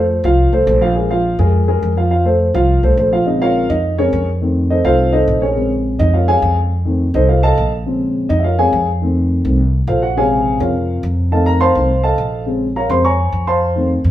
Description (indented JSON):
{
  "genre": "latin, salsa",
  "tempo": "208 BPM",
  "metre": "4/4",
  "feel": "straight",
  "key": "Bb minor",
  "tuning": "A4 = 440 Hz",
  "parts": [
    { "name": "dark concert grand piano", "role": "accompaniment", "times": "0.0-14.0 s", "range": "C3 to Db6", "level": "-15 LUFS", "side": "equal", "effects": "none" },
    { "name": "upright bass", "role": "bass", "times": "0.0-14.1 s", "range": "Bb1 to F2", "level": "-16 LUFS", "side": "equal", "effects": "none" }
  ],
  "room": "wet large studio reverb, RT60 0.9 s",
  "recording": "band playing live in one room",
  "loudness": "-13 LUFS",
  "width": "side -13 dB against mid",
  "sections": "0.0-3.3 A section; 3.3-14.1 B section",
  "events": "grand piano solo 3.3-14.1",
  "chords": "0.0 F; 1.0 Bb5; 2.1 F; 3.3 Bbm7; 4.4 F7; 5.6 Bbm7; 6.7 F7; 7.9 Bbm7; 9.0 F7; 10.2 Bbm7; 11.3 F7; 12.5 Bbm7"
}